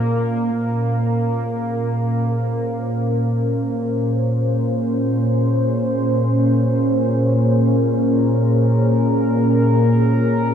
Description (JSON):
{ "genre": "ambient", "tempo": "free time", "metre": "none", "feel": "none", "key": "Bb minor", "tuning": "A4 = 439 Hz", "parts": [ { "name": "warm analog pad", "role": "sustained chords", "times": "0.0-10.5 s", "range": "Bb2 to C5", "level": "-17 LUFS", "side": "equal", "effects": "wide subtle chorus" }, { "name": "analog drone", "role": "drone", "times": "0.0-10.5 s", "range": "Bb3 to Bb4", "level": "-24 LUFS", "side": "equal", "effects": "chorus" } ], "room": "moderate huge ambient reverb, RT60 8.6 s", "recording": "cassette tape", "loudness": "-16 LUFS", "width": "side -8 dB against mid", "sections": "0.5-10.5 A section", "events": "filter sweep on analog synth pad 0.5-10.5", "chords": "0.0 Bbm7" }